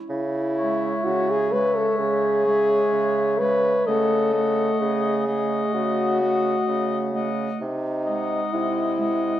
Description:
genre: classical, slow romantic movement for wind quintet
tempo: 64 BPM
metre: 4/4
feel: rubato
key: C# minor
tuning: A4 = 439 Hz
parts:
  - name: mellow clarinet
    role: accompaniment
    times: 0.0-9.4 s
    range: G#3 to A3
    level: -30 LUFS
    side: right 7 dB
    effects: none
  - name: warm French horn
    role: accompaniment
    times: 0.1-9.4 s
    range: D#4 to B4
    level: -22 LUFS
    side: left 1 dB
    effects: none
  - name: warm bassoon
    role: bass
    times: 0.1-9.3 s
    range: B#2 to C#3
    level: -28 LUFS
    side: right 2 dB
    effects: none
  - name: mellow concert flute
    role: melody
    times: 0.6-9.4 s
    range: E5 to F#5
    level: -34 LUFS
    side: left 5 dB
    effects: none
  - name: warm oboe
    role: second line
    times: 0.6-9.4 s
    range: C#5 to D#5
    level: -28 LUFS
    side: left 4 dB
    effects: none
room: wet recital hall reverb, RT60 1.5 s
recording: none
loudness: -20 LUFS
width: side -12 dB against mid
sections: 0.1-9.4 A section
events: none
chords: 0.1 C#m; 3.9 D#m7b5/C#; 7.6 G#7/B#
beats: | 0.09 1.05 1.99 2.92 | 3.87 4.81 5.75 6.68 | 7.60 8.53

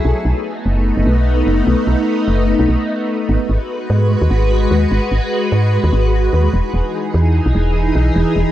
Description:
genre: IDM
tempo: 148 BPM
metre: 4/4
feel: swing 56% on 16ths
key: unclear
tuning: A4 = 440 Hz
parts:
  - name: soft string machine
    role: sustained chords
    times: 0.0-8.5 s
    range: E3 to B4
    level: -17 LUFS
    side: equal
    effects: phaser, ensemble chorus
  - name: woody FM bass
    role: bass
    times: 0.0-8.4 s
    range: E1 to G#2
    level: -14 LUFS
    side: equal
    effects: none
room: light reverb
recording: dark, warm production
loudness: -13 LUFS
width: side -13 dB against mid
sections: 0.0-8.5 A section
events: none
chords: 0.0 B7; 3.3 G#m7; 6.5 Emaj7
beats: | 0.05 0.45 0.86 1.26 | 1.67 2.08 2.48 2.89 | 3.29 3.70 4.10 4.51 | 4.91 5.32 5.72 6.13 | 6.54 6.94 7.34 7.75 | 8.16

